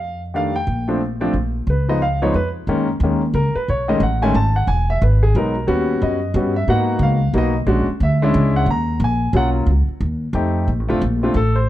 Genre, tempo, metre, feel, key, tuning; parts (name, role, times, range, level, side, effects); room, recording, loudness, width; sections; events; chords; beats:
jazz piano trio; 180 BPM; 3/4; swing 62% on 8ths; F# major; A4 = 441 Hz
warm grand piano; melody; 0.0-11.7 s; Eb3 to A#5; -19 LUFS; equal
upright bass; bass; 0.0-11.7 s; E1 to G#2; -18 LUFS; equal
little or no reverb; dark, warm production; -16 LUFS; side -14 dB against mid
0.0-2.7 A section; 2.7-10.7 B section; 10.7-11.7 A section
0.0 F13; 0.7 Bbmaj9; 1.7 Db7; 2.7 F#6; 3.7 B13; 4.7 E; 5.7 D#7alt; 6.7 G#m9; 7.7 A#7alt; 8.7 D#m7; 9.7 C#sus2; 10.3 F7; 10.7 Bbmaj9
0.01 0.34 | 0.68 1.01 1.34 | 1.68 2.01 2.35 | 2.68 3.01 3.35 | 3.68 4.01 4.34 | 4.68 5.01 5.34 | 5.67 6.01 6.34 | 6.67 7.00 7.34 | 7.67 8.00 8.34 | 8.67 9.00 9.34 | 9.67 10.00 10.34 | 10.67 11.01 11.34 | 11.67